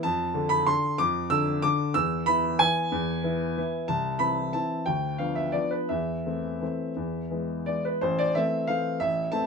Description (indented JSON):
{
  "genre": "classical, piano waltz",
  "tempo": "159-196 BPM",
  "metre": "3/4",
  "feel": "rubato",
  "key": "A minor",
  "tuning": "A4 = 440 Hz",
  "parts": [
    { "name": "warm upright piano", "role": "solo", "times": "0.0-9.5 s", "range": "A1 to E6", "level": "-24 LUFS", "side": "equal", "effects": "none" }
  ],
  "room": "light reverb",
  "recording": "close, detailed microphones",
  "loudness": "-24 LUFS",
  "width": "side -5 dB against mid",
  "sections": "0.0-8.0 A section; 8.0-9.5 B section",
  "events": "none",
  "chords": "0.0 Dm/F; 1.9 E; 3.9 Am/C; 4.9 Bdim/D; 5.9 Am/E; 7.0 E; 8.0 Am"
}